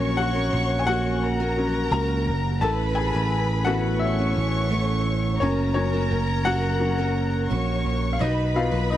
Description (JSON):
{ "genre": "pop", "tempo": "86 BPM", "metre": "4/4", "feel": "straight", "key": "F# major", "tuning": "A4 = 438 Hz", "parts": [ { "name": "rich studio violin section", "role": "second line", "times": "0.0-9.0 s", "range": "A#4 to C#6", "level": "-29 LUFS", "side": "equal", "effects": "none" }, { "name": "clear upright piano", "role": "accompaniment", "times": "0.0-9.0 s", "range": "F#3 to A#5", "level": "-26 LUFS", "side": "left 4 dB", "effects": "none" }, { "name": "picked steel-string acoustic guitar", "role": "riff", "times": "0.0-9.0 s", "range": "A3 to B4", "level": "-29 LUFS", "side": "right 10 dB", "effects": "none" }, { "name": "picked electric bass", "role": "bass", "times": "0.0-9.0 s", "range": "F#1 to C#2", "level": "-25 LUFS", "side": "equal", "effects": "none" } ], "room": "little or no reverb", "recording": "dry, close 1970s-style studio recording", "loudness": "-21 LUFS", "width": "side -12 dB against mid", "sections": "0.0-9.0 A section", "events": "upright piano solo 0.0-9.0", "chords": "0.0 F#/A#; 2.6 Aadd9; 5.4 F#; 8.2 B" }